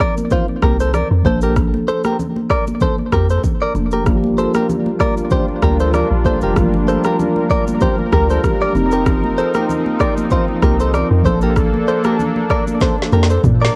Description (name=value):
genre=afrobeats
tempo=96 BPM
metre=4/4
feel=swing 55% on 16ths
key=unclear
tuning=A4 = 437 Hz
part: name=mellow tine electric piano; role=accompaniment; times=0.0-13.8 s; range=F3 to Bb4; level=-24 LUFS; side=equal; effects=phaser, cassette tape
part: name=direct-recorded clean electric guitar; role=riff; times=0.0-13.7 s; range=F4 to D5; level=-22 LUFS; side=equal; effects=cassette tape, tape echo
part: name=afro-pop drum kit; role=drums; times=0.0-13.8 s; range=kick drum, rim click, shaker, snare drum, toms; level=-22 LUFS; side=equal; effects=vintage 12-bit sampler grit, cassette tape
part: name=congas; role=percussion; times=0.2-13.6 s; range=none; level=-26 LUFS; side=equal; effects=none
part: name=deep log drum bass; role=bass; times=0.6-13.7 s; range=F1 to Bb2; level=-20 LUFS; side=equal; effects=none
part: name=warm analog pad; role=sustained chords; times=4.1-13.8 s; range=F3 to Bb4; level=-23 LUFS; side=equal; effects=chorus, tremolo, cassette tape
room=moderate studio reverb, RT60 0.6 s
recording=home recording on cassette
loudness=-16 LUFS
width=mono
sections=0.0-13.8 A section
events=drum fill 12.8-13.8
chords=0.0 F7sus4; 1.2 Bbmaj7; 8.8 F7sus4; 11.2 Bbmaj7